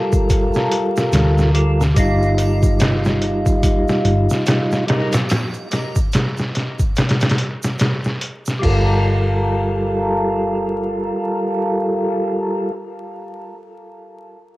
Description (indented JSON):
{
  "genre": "trip hop",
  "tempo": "72 BPM",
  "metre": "4/4",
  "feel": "swing 59% on 16ths",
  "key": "G minor",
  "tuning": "A4 = 440 Hz",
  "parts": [
    { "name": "percussive tonewheel organ", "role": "accompaniment", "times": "0.0-12.7 s", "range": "G3 to Bb4", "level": "-20 LUFS", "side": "equal", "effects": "slow rotary speaker, harmonic tremolo, cassette tape, tape echo" },
    { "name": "trip hop sampler-style drum kit", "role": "drums", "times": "0.1-8.8 s", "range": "crash cymbal, hi-hat, kick drum, snare drum", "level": "-18 LUFS", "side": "equal", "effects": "cassette tape" },
    { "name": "egg shaker and triangle", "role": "percussion", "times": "0.1-8.6 s", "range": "none", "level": "-38 LUFS", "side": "right 4 dB", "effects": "none" },
    { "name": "hollow-body short-scale fingered electric bass", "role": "bass", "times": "1.1-11.1 s", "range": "G1 to D2", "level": "-18 LUFS", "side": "equal", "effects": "none" }
  ],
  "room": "light reverb, digital ambience",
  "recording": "home recording on cassette, vinyl crackle",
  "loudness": "-16 LUFS",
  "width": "side -19 dB against mid",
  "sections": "0.0-8.6 A section; 8.6-12.0 B section",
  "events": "none",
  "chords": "0.0 Gm9; 2.0 Ebadd9/G; 8.6 Gm9"
}